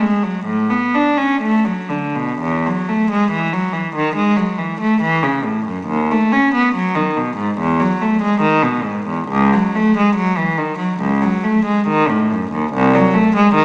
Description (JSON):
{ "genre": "classical, baroque-style suite movement for unaccompanied cello", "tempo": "70 BPM", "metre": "4/4", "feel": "uneven beats, rubato", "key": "E major", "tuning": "A4 = 439 Hz", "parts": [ { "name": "warm cello", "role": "solo", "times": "0.0-13.6 s", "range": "B#1 to D4", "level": "-14 LUFS", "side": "equal", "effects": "none" } ], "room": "wet recital hall reverb, RT60 1.7 s", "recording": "recorded in a church or concert hall, small speaker sound", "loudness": "-14 LUFS", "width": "side -28 dB against mid", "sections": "0.0-2.4 A section; 2.4-13.6 A section", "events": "none", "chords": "none" }